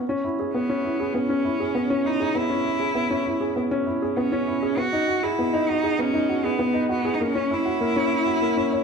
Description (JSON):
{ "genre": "electronica", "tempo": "99 BPM", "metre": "4/4", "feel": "straight", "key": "C# dorian", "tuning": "A4 = 440 Hz", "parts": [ { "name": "dark upright piano", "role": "riff", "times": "0.0-8.8 s", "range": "A#3 to C#5", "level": "-23 LUFS", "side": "equal", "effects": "tape echo" }, { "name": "rich cello", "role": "melody", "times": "0.5-8.8 s", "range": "B3 to F#4", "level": "-25 LUFS", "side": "right 1 dB", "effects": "none" } ], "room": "moderate echo chamber reverb, RT60 1.4 s", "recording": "none", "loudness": "-21 LUFS", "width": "side -5 dB against mid", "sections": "0.0-8.8 A section", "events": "build-up 0.0-8.8", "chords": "0.0 C#m7; 4.8 G#m7; 7.2 F#7/A#", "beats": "0.54 1.14 1.75 | 2.36 2.96 3.57 4.17 | 4.78 5.39 5.99 6.60 | 7.21 7.81 8.42" }